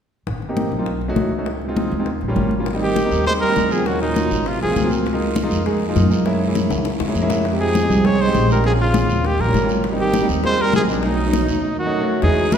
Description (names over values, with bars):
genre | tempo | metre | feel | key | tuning
Afro-Cuban jazz | 201 BPM | 4/4 | straight | Ab major | A4 = 440 Hz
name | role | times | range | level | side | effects
upright bass | bass | 0.3-12.6 s | Ab1 to Gb2 | -22 LUFS | equal | none
bongos | percussion | 0.3-12.6 s | none | -28 LUFS | left 6 dB | none
congas | percussion | 0.3-12.6 s | none | -26 LUFS | left 2 dB | none
warm concert grand piano | accompaniment | 0.5-12.6 s | Gb3 to Ab4 | -22 LUFS | right 1 dB | none
guiro | percussion | 2.7-12.6 s | none | -36 LUFS | right 4 dB | none
warm trumpet | melody | 2.8-4.9, 7.6-12.6 s | Eb4 to Db5 | -20 LUFS | equal | none
breathy trombone | second line | 2.8-4.9, 7.6-12.6 s | Bb2 to Ab3 | -26 LUFS | right 3 dB | none
room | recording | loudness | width
wet scoring stage reverb, RT60 1.6 s | recorded in a church or concert hall | -16 LUFS | side -8 dB against mid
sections
0.3-2.7 A section; 2.7-12.2 B section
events
drum fill 6.7-7.5; break 11.6-12.2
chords
0.3 Abmaj7; 0.9 B9; 1.5 Dbmaj7; 2.1 Eb9; 2.7 Abmaj7; 3.9 Ebm9; 4.5 Ab13; 5.1 Db69; 6.3 Gb9; 7.5 Fm9; 8.6 Bbm9; 9.2 Eb9; 9.8 Abmaj7; 11.0 B9